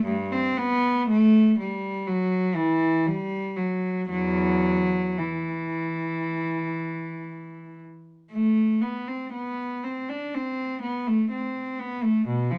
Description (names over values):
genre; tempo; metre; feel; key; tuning
classical, baroque-style suite movement for unaccompanied cello; 55-62 BPM; 4/4; rubato; E minor; A4 = 437 Hz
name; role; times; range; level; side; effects
warm cello; solo; 0.0-12.6 s; E2 to D4; -26 LUFS; equal; none
room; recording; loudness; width
moderate studio reverb, RT60 0.6 s; none; -25 LUFS; mono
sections
0.0-8.3 A section; 8.3-12.6 A section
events
none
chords
none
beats
| 0.05 1.08 2.06 3.06 | 4.08 5.17 6.24 7.28 | 8.32 9.32 10.32 11.30 | 12.27